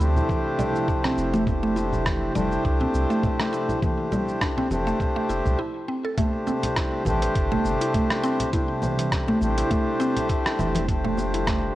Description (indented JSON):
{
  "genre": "organic downtempo",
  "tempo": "102 BPM",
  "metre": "4/4",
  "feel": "swing 55% on 16ths",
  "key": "unclear",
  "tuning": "A4 = 440 Hz",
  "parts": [
    { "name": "hand-pumped harmonium", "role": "accompaniment", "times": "0.0-11.7 s", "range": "A3 to C5", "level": "-26 LUFS", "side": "left 1 dB", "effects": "sidechain pumping, ping-pong delay" },
    { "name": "warbly tape-like pad", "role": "sustained chords", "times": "0.0-11.8 s", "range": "C3 to F4", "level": "-32 LUFS", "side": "right 2 dB", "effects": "chorus, built-in reverb, sidechain pumping" },
    { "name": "mallet-like synth pluck", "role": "arpeggios", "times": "0.0-11.6 s", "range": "E3 to A4", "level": "-28 LUFS", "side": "equal", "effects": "chorus, phaser, ping-pong delay" },
    { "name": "round analog bass", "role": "bass", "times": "0.0-11.7 s", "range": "F1 to D2", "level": "-27 LUFS", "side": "equal", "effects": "none" },
    { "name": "dusty soul sampler-style drum kit", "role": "drums", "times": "0.0-11.6 s", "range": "cabasa, congas, hi-hat, rim click", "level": "-30 LUFS", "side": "right 1 dB", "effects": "none" },
    { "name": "electronic kick drum", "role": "drums", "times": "0.3-11.6 s", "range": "none", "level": "-26 LUFS", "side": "equal", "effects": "none" },
    { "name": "congas and bongos", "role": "percussion", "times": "0.6-11.3 s", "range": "none", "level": "-36 LUFS", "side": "left 2 dB", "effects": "none" }
  ],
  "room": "moderate echo chamber reverb, RT60 1.8 s, digital ambience",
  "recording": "worn, warbling old tape, cassette tape, warbly pitch drift",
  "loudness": "-21 LUFS",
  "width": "side -15 dB against mid",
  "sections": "0.0-6.2 A section; 6.2-11.8 B section",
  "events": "break 5.6-6.2",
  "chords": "0.0 Fmaj7"
}